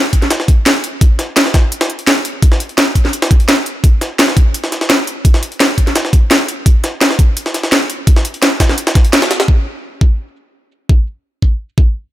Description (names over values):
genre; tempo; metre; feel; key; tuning
drum and bass; 170 BPM; 4/4; straight; none; none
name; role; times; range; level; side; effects
drum and bass drum kit; drums; 0.1-11.9 s; cabasa, hi-hat, snare drum; -14 LUFS; equal; low-pass filter on hats, low-pass filter on snare, low-pass filter on perc, low-pass filter on room
electronic kick drum; drums; 0.1-11.9 s; none; -9 LUFS; equal; none
jungle sampler-style drum kit; drums; 0.1-9.5 s; hi-hat, snare drum; -18 LUFS; equal; high-pass filter on hats, high-pass filter on snare
room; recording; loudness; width
digital ambience; none; -11 LUFS; side -14 dB against mid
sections
0.0-9.5 A section; 9.5-12.1 B section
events
kick drops out 9.1-9.5; band accent 9.1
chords
none